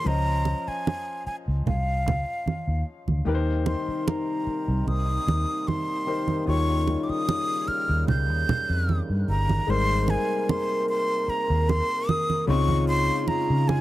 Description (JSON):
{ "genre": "lush 1970s-style soul", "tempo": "75 BPM", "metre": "4/4", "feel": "swing 54% on 16ths", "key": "Ab major", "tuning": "A4 = 440 Hz", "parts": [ { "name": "breathy jazz flute", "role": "melody", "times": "0.0-13.8 s", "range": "F5 to G6", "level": "-28 LUFS", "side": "equal", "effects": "tape echo" }, { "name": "clear concert grand piano", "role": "accompaniment", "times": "0.0-13.8 s", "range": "Db3 to Eb5", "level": "-30 LUFS", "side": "left 5 dB", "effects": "none" }, { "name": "vintage muted fingered electric bass", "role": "bass", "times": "0.1-13.8 s", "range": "G1 to Db3", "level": "-24 LUFS", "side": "equal", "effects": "none" }, { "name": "congas", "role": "percussion", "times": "0.5-13.8 s", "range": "none", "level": "-28 LUFS", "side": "right 3 dB", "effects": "none" }, { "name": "mellow French horn section", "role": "sustained chords", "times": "3.3-13.8 s", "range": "C3 to Bb4", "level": "-31 LUFS", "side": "right 2 dB", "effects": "none" } ], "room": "little or no reverb", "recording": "dry, close 1970s-style studio recording", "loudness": "-22 LUFS", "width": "side -15 dB against mid", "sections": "0.0-9.7 A section; 9.7-13.8 B section", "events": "none", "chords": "0.1 Dbmaj7; 3.3 Cm7; 6.5 Eb7; 9.7 Abmaj9; 12.5 Dbmaj7", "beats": "| 0.07 0.87 1.67 2.47 | 3.27 4.07 4.87 5.67 | 6.47 7.28 8.08 8.88 | 9.68 10.48 11.28 12.08 | 12.88 13.68" }